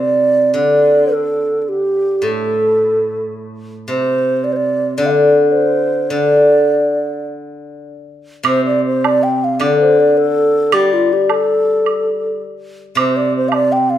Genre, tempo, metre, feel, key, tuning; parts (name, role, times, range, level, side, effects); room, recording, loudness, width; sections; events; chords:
chinese traditional, Chinese chamber ensemble; 107 BPM; 4/4; rubato; D yu mode; A4 = 438 Hz
mellow hollow xiao; melody; 0.0-14.0 s; F4 to G5; -15 LUFS; right 2 dB
steel-string zither; accompaniment; 0.0-14.0 s; A2 to G3; -16 LUFS; left 3 dB
woodblock; percussion; 8.4-13.7 s; -20 LUFS; right 7 dB
moderate recital hall reverb, RT60 1.5 s; minimal, uncompressed stereo recording; -12 LUFS; side -11 dB against mid
0.0-8.5 A section; 8.5-14.0 B section